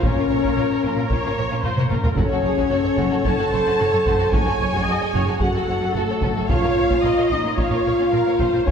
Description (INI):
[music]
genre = cinematic, epic orchestral film score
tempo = 112 BPM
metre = 4/4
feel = straight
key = unclear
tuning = A4 = 439 Hz
[part]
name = rich symphonic violin section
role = melody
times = 0.0-8.7 s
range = A4 to A5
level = -26 LUFS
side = left 2 dB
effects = none
[part]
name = warm symphonic viola section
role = accompaniment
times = 0.0-8.7 s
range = Ab4 to Eb5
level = -27 LUFS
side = right 1 dB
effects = none
[part]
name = mellow French horn section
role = sustained chords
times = 0.0-8.7 s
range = A3 to A4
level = -21 LUFS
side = left 1 dB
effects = none
[part]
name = clear studio double bass section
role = bass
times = 0.0-8.7 s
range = Gb1 to Bb1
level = -28 LUFS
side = right 2 dB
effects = none
[part]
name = rich symphonic cello section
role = bass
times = 0.0-8.7 s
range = Gb2 to Bb2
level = -28 LUFS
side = right 2 dB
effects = none
[part]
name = taiko ensemble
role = drums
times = 0.0-8.7 s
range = none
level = -24 LUFS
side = equal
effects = none
[part]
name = warm symphonic violin section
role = second line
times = 0.1-8.7 s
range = Db4 to Db5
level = -30 LUFS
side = left 1 dB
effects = none
[sound]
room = wet scoring stage reverb, RT60 1.8 s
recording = heard from further back in the room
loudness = -17 LUFS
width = side -7 dB against mid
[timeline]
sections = 0.0-8.7 A section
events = drum fill 1.6-2.2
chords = 0.0 Bbm; 2.2 Gbm; 6.5 Bbm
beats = | 0.04 0.58 1.11 1.65 | 2.18 2.72 3.26 3.80 | 4.34 4.87 5.41 5.95 | 6.50 7.04 7.58 8.12 | 8.67